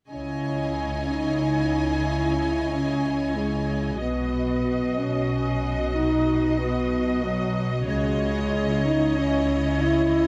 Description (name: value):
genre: cinematic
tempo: 93 BPM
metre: 3/4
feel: straight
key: C# minor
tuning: A4 = 444 Hz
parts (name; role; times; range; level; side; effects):
- warm symphonic violin section; second line; 0.1-10.3 s; D#5 to G#5; -35 LUFS; equal; none
- rich symphonic viola section; accompaniment; 0.1-10.3 s; E4 to D#5; -34 LUFS; equal; none
- warm French horn section; sustained chords; 0.1-10.3 s; F#3 to E4; -27 LUFS; equal; none
- warm studio double bass section; bass; 0.1-10.3 s; B1 to C#2; -31 LUFS; equal; none
- warm symphonic cello section; bass; 0.1-10.3 s; B2 to C#3; -33 LUFS; equal; none
room: moderate scoring stage reverb, RT60 1.9 s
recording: none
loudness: -24 LUFS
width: mono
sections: 0.1-10.3 A section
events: none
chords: 0.1 C#madd9; 4.0 B; 7.9 C#madd9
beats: | 0.10 0.76 1.41 | 2.06 2.71 3.36 | 4.00 4.65 5.30 | 5.95 6.59 7.23 | 7.88 8.53 9.18 | 9.82